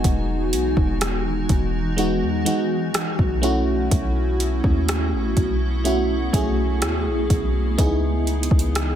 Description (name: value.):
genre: contemporary R&B.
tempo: 62 BPM.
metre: 4/4.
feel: straight.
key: unclear.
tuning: A4 = 440 Hz.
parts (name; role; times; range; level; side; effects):
FM electric piano with soft pad layer; accompaniment; 0.0-9.0 s; G#3 to G#4; -23 LUFS; equal; chorus.
granular cloud pad; sustained chords; 0.0-9.0 s; C#3 to G#5; -29 LUFS; right 1 dB; built-in reverb.
warm 808-style bass; bass; 0.0-9.0 s; E1 to E2; -23 LUFS; equal; none.
smooth R&B drum kit; drums; 0.0-9.0 s; hi-hat, kick drum, rim click; -23 LUFS; equal; none.
room: little or no reverb.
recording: none.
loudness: -19 LUFS.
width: side -10 dB against mid.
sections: 0.0-9.0 A section.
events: none.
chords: 0.0 Emaj9; 3.4 B7sus4; 7.8 C#m9.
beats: | 0.04 1.01 1.98 2.94 | 3.91 4.88 5.85 6.82 | 7.78 8.75.